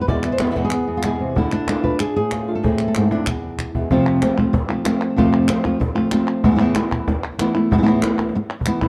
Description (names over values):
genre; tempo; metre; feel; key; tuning
flamenco; 189 BPM; 4/4; straight; E phrygian dominant; A4 = 442 Hz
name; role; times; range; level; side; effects
flamenco guitar; melody; 0.0-8.9 s; E2 to D5; -20 LUFS; equal; tape echo
flamenco guitar; stabs; 0.0-3.9 s; E2 to F4; -28 LUFS; equal; none
cajon; percussion; 0.1-8.9 s; none; -27 LUFS; equal; none
palmas hand claps; percussion; 0.2-8.9 s; none; -31 LUFS; equal; none
room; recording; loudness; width
light reverb; dark, warm production; -19 LUFS; mono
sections
0.0-3.9 A section; 3.9-8.9 B section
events
drum fill 3.0-3.9, 8.2-8.9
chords
0.0 E; 1.4 Dm; 2.6 Am; 3.3 E; 3.9 F; 6.4 Esus4